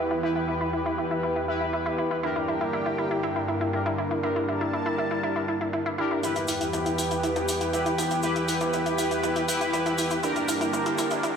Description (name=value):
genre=melodic techno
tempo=120 BPM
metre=4/4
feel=straight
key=unclear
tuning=A4 = 440 Hz
part: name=lush unison pad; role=sustained chords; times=0.0-11.4 s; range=E2 to A5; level=-30 LUFS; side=right 1 dB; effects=chorus
part: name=analog pluck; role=arpeggios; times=0.0-11.3 s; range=E4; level=-30 LUFS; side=equal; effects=chorus, ping-pong delay
part: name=analog synth brass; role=stabs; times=0.0-11.4 s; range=D4 to B4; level=-28 LUFS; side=left 1 dB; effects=chorus, ping-pong delay
part: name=deep house drum kit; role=drums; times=6.2-11.3 s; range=congas, hi-hat, toms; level=-34 LUFS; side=left 2 dB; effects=overdrive, high-pass filter on hats, low-pass filter on hats, high-pass filter on toms, low-pass filter on toms, high-pass filter on perc, low-pass filter on perc, high-pass filter on room, low-pass filter on room
part: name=tube shaker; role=percussion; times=6.2-11.3 s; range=none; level=-37 LUFS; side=right 2 dB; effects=none
room=moderate huge ambient reverb, RT60 4.5 s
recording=played on a big sound system in a bare room, stone room reverb, high-pass filter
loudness=-24 LUFS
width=side -7 dB against mid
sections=0.0-6.2 A section; 6.2-11.4 B section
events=filter sweep on synth arpeggio sound 0.0-6.2; build-up 6.2-11.4; drum fill 6.2-11.4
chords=0.0 Em; 2.2 Gm; 6.2 Em; 10.2 Gm